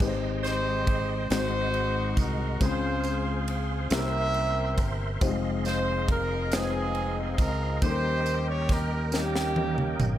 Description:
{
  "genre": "slow gospel",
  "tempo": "46 BPM (dotted quarters)",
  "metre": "6/8",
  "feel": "straight",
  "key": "Ab major",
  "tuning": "A4 = 440 Hz",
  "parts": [
    { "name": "dark concert grand piano", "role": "accompaniment", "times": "0.0-10.2 s", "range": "Ab2 to C5", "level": "-32 LUFS", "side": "left 5 dB", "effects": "none" },
    { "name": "bright tonewheel organ", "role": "sustained chords", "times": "0.0-10.2 s", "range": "Ab3 to C6", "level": "-37 LUFS", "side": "right 2 dB", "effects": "slow rotary speaker, chorus vibrato" },
    { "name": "fingered electric bass", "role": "bass", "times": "0.0-10.2 s", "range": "F1 to Eb2", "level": "-30 LUFS", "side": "equal", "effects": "none" },
    { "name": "crisp fusion drum kit", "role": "drums", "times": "0.0-10.2 s", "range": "crash cymbal, kick drum, ride cymbal, snare drum, toms", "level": "-29 LUFS", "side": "right 1 dB", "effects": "none" },
    { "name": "tambourine", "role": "percussion", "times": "0.0-10.2 s", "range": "none", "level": "-42 LUFS", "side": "right 7 dB", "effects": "none" },
    { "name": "clear horn section", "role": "melody", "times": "0.4-10.2 s", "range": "Bb3 to E5", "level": "-30 LUFS", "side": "right 1 dB", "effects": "none" }
  ],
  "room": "small room ambience",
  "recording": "none",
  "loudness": "-25 LUFS",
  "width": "side -12 dB against mid",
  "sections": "0.0-10.2 A section",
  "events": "drum fill 9.1-10.2",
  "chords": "0.0 Abmaj7; 1.3 Ab7; 2.6 Dbmaj7; 3.9 C7b9; 5.2 Fm7; 7.8 Eb7",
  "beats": "| 0.00 1.31 | 2.61 3.91 | 5.22 6.52 | 7.82 9.12"
}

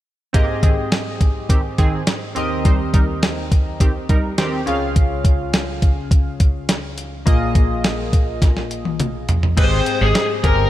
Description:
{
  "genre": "1980s-style pop",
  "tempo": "104 BPM",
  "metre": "4/4",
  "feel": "straight",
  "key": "Ab major",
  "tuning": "A4 = 440 Hz",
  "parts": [
    { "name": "chorused retro synth keys", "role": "accompaniment", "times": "0.3-10.7 s", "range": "Bb1 to F5", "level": "-23 LUFS", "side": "left 1 dB", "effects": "none" },
    { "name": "funky polysynth comp", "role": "stabs", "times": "0.3-4.6 s", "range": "Eb3 to C5", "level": "-26 LUFS", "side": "right 2 dB", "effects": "chorus" },
    { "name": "clean 12-bit digital drum machine", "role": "drums", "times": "0.3-10.6 s", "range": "crash cymbal, hi-hat, kick drum, snare drum, toms", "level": "-16 LUFS", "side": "equal", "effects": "none" },
    { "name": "high-gain lead guitar", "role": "melody", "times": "9.6-10.7 s", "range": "Ab4 to C5", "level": "-19 LUFS", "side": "left 1 dB", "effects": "distortion" },
    { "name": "fretless electric bass", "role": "bass", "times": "9.6-10.7 s", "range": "G1 to Ab1", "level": "-18 LUFS", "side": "equal", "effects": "none" }
  ],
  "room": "light reverb, digital ambience",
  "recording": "none",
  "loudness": "-16 LUFS",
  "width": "side -13 dB against mid",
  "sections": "0.3-9.6 A section; 9.6-10.7 B section",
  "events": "drum fill 8.4-9.6",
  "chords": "0.3 Abmaj7; 2.4 Eb6; 4.7 Db; 7.3 Bb7sus4; 9.6 Abmaj7",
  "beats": "| 0.34 0.92 1.50 2.08 | 2.65 3.23 3.81 4.38 | 4.96 5.54 6.11 6.69 | 7.27 7.84 8.42 9.00 | 9.57 10.15"
}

